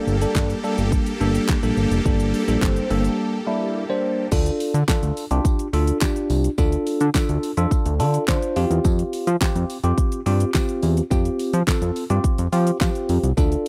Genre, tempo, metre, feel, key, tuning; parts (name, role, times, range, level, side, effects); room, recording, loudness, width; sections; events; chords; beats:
dance-pop; 106 BPM; 4/4; straight; D minor; A4 = 440 Hz
bell-like tine electric piano; accompaniment; 0.0-13.7 s; G3 to C5; -26 LUFS; equal; phaser, sidechain pumping
supersaw chords; sustained chords; 0.0-4.3 s; Bb3 to A4; -31 LUFS; equal; phaser, sidechain pumping
swell; sound effects; 2.6-3.2 s; -37 LUFS; equal
fat analog bass; bass; 0.1-13.6 s; F1 to F3; -23 LUFS; equal; sidechain pumping
pop drum kit; drums; 0.1-13.7 s; crash cymbal, handclaps, hi-hat, kick drum, shaker, snare drum; -25 LUFS; equal
tambourine; percussion; 4.3-13.7 s; -44 LUFS; equal
little or no reverb; dry, close 1970s-style studio recording; -21 LUFS; mono
0.0-4.3 A section; 4.3-13.7 B section
break 3.2-4.3
0.0 D5; 4.3 Dm; 8.6 Fsus2
0.36 0.92 1.49 | 2.06 2.62 3.19 3.75 | 4.32 4.88 5.45 6.02 | 6.58 7.15 7.71 8.28 | 8.85 9.41 9.98 10.55 | 11.11 11.68 12.24 12.81 | 13.38